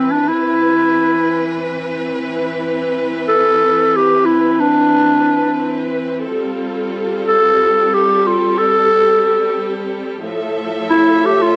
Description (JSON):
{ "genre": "folk", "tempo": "free time", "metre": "none", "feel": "none", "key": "C major", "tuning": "A4 = 441 Hz", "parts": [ { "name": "growling clarinet", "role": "melody", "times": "0.0-11.6 s", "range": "C4 to A4", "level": "-15 LUFS", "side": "equal", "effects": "cassette tape" }, { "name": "warm studio string section", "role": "sustained chords", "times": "0.0-11.6 s", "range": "A2 to E5", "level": "-22 LUFS", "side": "equal", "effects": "cassette tape" } ], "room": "moderate studio reverb, RT60 0.6 s", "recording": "home recording on cassette", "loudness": "-15 LUFS", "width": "mono", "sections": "0.0-11.6 A section", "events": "none", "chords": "0.0 Cmaj7; 6.2 G9sus4; 10.2 Fmaj7/A", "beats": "free time" }